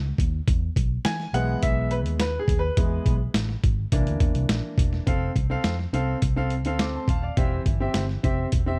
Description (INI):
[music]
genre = uptempo 1960s-style soul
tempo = 104 BPM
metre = 4/4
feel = straight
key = E major, F major from 5.1 s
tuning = A4 = 439 Hz
[part]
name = vintage muted fingered electric bass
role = bass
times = 0.0-8.8 s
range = Eb1 to E3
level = -29 LUFS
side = equal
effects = none
[part]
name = boom bap sampler-style drum kit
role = drums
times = 0.2-8.7 s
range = hi-hat, kick drum, snare drum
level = -27 LUFS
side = equal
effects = none
[part]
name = bright grand piano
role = accompaniment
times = 1.1-8.8 s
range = E3 to D6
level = -31 LUFS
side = equal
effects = none
[sound]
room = little or no reverb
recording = none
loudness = -24 LUFS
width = mono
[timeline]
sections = 0.0-5.1 A section; 5.1-8.8 B section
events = grand piano solo 0.0-5.1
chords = 0.5 E; 3.9 C7; 5.1 F; 7.4 C/E